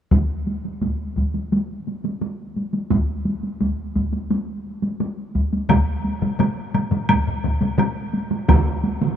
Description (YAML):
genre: japanese traditional, taiko drum ensemble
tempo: 86 BPM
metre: 4/4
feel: straight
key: none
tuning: none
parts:
  - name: taiko ensemble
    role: percussion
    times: 0.1-9.2 s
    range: none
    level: -23 LUFS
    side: right 1 dB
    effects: none
  - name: taiko ensemble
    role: percussion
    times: 0.1-8.7 s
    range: none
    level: -22 LUFS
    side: equal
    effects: none
  - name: taiko ensemble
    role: percussion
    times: 5.7-7.9 s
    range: none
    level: -26 LUFS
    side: left 3 dB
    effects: none
  - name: woodblock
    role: percussion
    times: 5.7-8.7 s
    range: none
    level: -28 LUFS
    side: equal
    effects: none
  - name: taiko ensemble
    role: percussion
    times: 8.5-9.2 s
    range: none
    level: -23 LUFS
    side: right 4 dB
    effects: none
room: moderate huge ambient reverb, RT60 8.7 s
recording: minimal, uncompressed stereo recording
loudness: -20 LUFS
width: side -9 dB against mid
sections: 0.1-5.7 A section; 5.7-9.2 B section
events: none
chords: none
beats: | 0.12 0.81 1.51 2.21 | 2.91 3.60 4.30 5.00 | 5.70 6.39 7.09 7.79 | 8.48